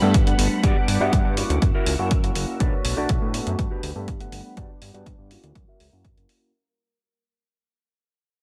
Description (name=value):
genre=filtered disco house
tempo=122 BPM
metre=4/4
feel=straight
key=unclear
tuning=A4 = 441 Hz
part: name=overdriven tine electric piano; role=accompaniment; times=0.0-6.5 s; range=G3 to F#5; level=-30 LUFS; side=equal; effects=phaser, vintage 12-bit sampler grit, sidechain pumping, low-pass filter
part: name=string machine, full ensemble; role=sustained chords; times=0.0-6.5 s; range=G3 to E6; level=-35 LUFS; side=equal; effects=phaser, ensemble chorus, sidechain pumping, low-pass filter
part: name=fat analog bass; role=bass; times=0.0-6.3 s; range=F#1 to A2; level=-28 LUFS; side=equal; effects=sidechain pumping, low-pass filter
part: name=mellow electric guitar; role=riff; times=0.1-6.3 s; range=D4 to E5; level=-33 LUFS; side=equal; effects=sidechain pumping, low-pass filter
part: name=electronic hi-hat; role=drums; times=0.1-6.4 s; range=none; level=-32 LUFS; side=equal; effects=sidechain pumping on hats, sidechain pumping on perc, sidechain pumping on cymbals
part: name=electronic kick drum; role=drums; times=0.1-6.1 s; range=none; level=-24 LUFS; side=equal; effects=none
room=light reverb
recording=none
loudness=-22 LUFS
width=mono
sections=0.0-6.5 A section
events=fade-out 0.0-6.5; filter sweep on analog synth bass 0.0-6.5; filter sweep 0.0-6.5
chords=0.0 Gmaj7; 0.6 Em9/G; 1.6 F#7; 2.6 Bm7; 3.6 Gmaj7; 4.6 Em9/G; 5.6 F#7